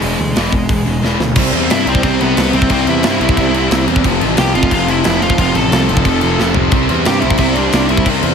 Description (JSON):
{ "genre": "punk rock", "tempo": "179 BPM", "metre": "4/4", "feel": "straight", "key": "unclear", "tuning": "A4 = 440 Hz", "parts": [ { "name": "smooth overdriven lead guitar", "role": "melody", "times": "0.0-8.1 s", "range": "G#3 to A5", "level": "-19 LUFS", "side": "equal", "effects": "ping-pong delay" }, { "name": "sludgy distorted guitar", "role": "riff", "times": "0.0-8.3 s", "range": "E2 to C4", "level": "-19 LUFS", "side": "right 13 dB", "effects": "overdrive" }, { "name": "tight distorted guitar", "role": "riff", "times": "0.0-8.3 s", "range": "E2 to C4", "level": "-19 LUFS", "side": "left 15 dB", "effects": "distortion" }, { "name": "fuzz picked electric bass", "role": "bass", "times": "0.0-8.3 s", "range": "E1 to G2", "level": "-18 LUFS", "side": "equal", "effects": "overdrive" }, { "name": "tight metal drum kit", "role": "drums", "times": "0.0-8.3 s", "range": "crash cymbal, hi-hat, kick drum, snare drum, toms", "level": "-17 LUFS", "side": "equal", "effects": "none" }, { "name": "fuzz guitar", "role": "riff", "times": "1.4-8.3 s", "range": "F2 to C4", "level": "-21 LUFS", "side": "left 1 dB", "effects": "distortion" } ], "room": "little or no reverb", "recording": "none", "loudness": "-11 LUFS", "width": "side -6 dB against mid", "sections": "0.0-1.4 A section; 1.4-8.3 B section", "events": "drum fill 1.0-1.4, 6.4-6.7", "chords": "0.0 E; 1.4 C; 4.0 F; 6.7 C", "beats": "| 0.02 0.35 0.69 1.02 | 1.36 1.70 2.03 2.37 | 2.70 3.04 3.37 3.71 | 4.04 4.38 4.71 5.05 | 5.38 5.72 6.05 6.39 | 6.72 7.06 7.39 7.73 | 8.06" }